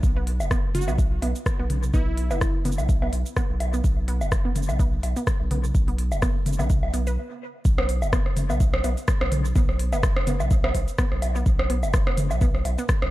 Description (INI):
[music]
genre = minimal techno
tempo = 126 BPM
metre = 4/4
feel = swing 55% on 16ths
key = unclear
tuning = A4 = 437 Hz
[part]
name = saturated sub bass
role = bass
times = 0.0-13.1 s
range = F#1 to B1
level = -26 LUFS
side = equal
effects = sidechain pumping
[part]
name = electronic kick drum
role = drums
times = 0.0-13.0 s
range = none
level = -22 LUFS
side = equal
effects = studio reverb
[part]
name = minimal click drum kit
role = drums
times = 0.0-13.0 s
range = hi-hat, rim click, shaker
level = -33 LUFS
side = equal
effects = studio reverb, dub echo
[part]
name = resonant blip pluck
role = riff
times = 0.2-12.8 s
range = B3 to B4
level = -34 LUFS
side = right 1 dB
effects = chorus, sidechain pumping, dub echo
[part]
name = booming analog drum machine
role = percussion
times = 0.4-13.1 s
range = rim click, toms, woodblock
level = -29 LUFS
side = equal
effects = studio reverb, dub echo
[part]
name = plucky unison lead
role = melody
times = 0.7-2.6 s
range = E4 to F#4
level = -34 LUFS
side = right 1 dB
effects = phaser, dub echo
[sound]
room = little or no reverb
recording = echo-heavy mix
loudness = -21 LUFS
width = side -16 dB against mid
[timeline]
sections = 0.0-7.7 A section; 7.7-13.1 B section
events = break 7.2-7.7; drop 7.7-13.1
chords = 0.0 B5